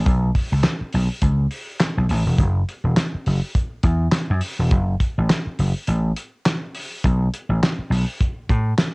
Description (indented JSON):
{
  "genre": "funk",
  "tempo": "103 BPM",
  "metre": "4/4",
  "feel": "swing 56% on 16ths",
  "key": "F# minor",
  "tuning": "A4 = 440 Hz",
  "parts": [
    { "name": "vintage slap bass", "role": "bass", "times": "0.0-8.7 s", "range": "E1 to A2", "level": "-19 LUFS", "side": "equal", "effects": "none" },
    { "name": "cloth-damped thuddy drum kit", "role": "drums", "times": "0.1-8.9 s", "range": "handclaps, hi-hat, kick drum, snare drum", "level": "-21 LUFS", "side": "equal", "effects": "cassette tape" }
  ],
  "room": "little or no reverb",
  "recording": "home recording on cassette",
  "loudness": "-18 LUFS",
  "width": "side -34 dB against mid",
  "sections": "0.0-8.9 A section",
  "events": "none",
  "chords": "none"
}